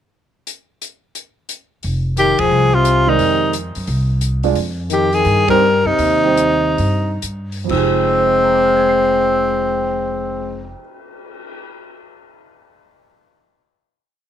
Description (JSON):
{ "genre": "modal jazz", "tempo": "122-176 BPM", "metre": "4/4", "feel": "swing 65% on 8ths", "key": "F dorian", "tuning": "A4 = 440 Hz", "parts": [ { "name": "open jazz drum kit", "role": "drums", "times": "0.5-11.5 s", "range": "crash cymbal, cymbal swell, hi-hat, kick drum, ride cymbal", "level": "-31 LUFS", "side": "left 3 dB", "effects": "none" }, { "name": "upright bass", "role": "bass", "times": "1.8-10.7 s", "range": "E1 to G2", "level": "-21 LUFS", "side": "equal", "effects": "none" }, { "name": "warm tenor saxophone", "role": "melody", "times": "2.2-10.7 s", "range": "C4 to Bb4", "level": "-15 LUFS", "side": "right 1 dB", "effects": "none" }, { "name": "breathy trombone", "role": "second line", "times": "2.2-10.7 s", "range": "C3 to Ab3", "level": "-21 LUFS", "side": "left 12 dB", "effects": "none" }, { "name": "warm baby grand piano", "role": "accompaniment", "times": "3.1-11.9 s", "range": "F2 to C7", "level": "-22 LUFS", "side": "right 12 dB", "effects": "none" } ], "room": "wet spring reverb, RT60 2.1 s", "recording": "1960s-style stereo with parts hard left and right", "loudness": "-13 LUFS", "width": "side -10 dB against mid", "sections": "0.5-1.8 pickup bar; 1.8-7.7 A section; 7.7-11.6 final chord", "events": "band accent 2.3, 5.4; slowing down 4.6-7.7", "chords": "0.5 N.C.; 1.8 Fm9; 4.6 Cm/F; 7.7 Fm9" }